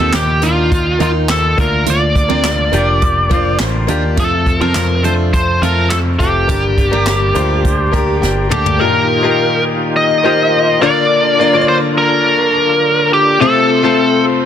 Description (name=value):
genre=piano-driven pop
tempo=104 BPM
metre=4/4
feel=straight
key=unclear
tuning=A4 = 439 Hz
part: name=biting lead guitar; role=melody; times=0.0-14.2 s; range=F4 to Eb5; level=-14 LUFS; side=equal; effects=overdrive, tape echo
part: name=bright grand piano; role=accompaniment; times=0.0-14.5 s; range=G2 to Bb5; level=-17 LUFS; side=left 4 dB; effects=none
part: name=picked steel-string acoustic guitar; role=riff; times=0.0-8.6 s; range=C4 to G4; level=-23 LUFS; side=right 9 dB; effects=none
part: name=picked electric bass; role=bass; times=0.0-8.8 s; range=F1 to F2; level=-17 LUFS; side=right 1 dB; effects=none
part: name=jazz brush drum kit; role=drums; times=0.1-8.8 s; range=handclaps, hi-hat, kick drum, snare drum, toms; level=-19 LUFS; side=equal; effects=soft clipping on snare
part: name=tonewheel organ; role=sustained chords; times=8.8-14.5 s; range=D3 to Bb4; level=-20 LUFS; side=right 1 dB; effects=overdrive, chorus vibrato, slow rotary speaker
room=light reverb, small room ambience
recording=dense, heavily limited modern master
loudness=-11 LUFS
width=side -9 dB against mid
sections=0.0-8.8 A section; 8.8-14.5 B section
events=grand piano fill 7.6-8.8; drum fill 8.2-8.8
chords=0.0 Ebadd9; 1.6 Bb; 4.2 F; 6.5 Gm; 8.8 Ebadd9; 10.8 Bb/D; 13.4 F